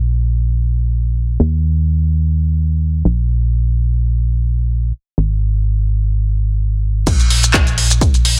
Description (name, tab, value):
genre	piano house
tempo	127 BPM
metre	4/4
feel	swing 54% on 16ths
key	unclear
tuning	A4 = 441 Hz
part	organ-like FM bass	bass	0.0-8.4 s	Ab1 to Eb2	-17 LUFS	equal	sidechain pumping
part	electronic kick drum	drums	7.1-8.1 s	none	-17 LUFS	equal	none
part	punchy analog drum machine	drums	7.1-8.4 s	crash cymbal, handclaps, hi-hat, shaker	-18 LUFS	equal	none
room	little or no reverb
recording	dense, heavily limited modern master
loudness	-16 LUFS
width	mono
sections	0.0-7.1 A section; 7.1-8.4 B section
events	drop 7.1-8.4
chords	none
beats	0.46 0.93 | 1.40 1.87 2.35 2.82 | 3.29 3.76 4.24 4.71 | 5.18 5.65 6.12 6.60 | 7.07 7.54 8.01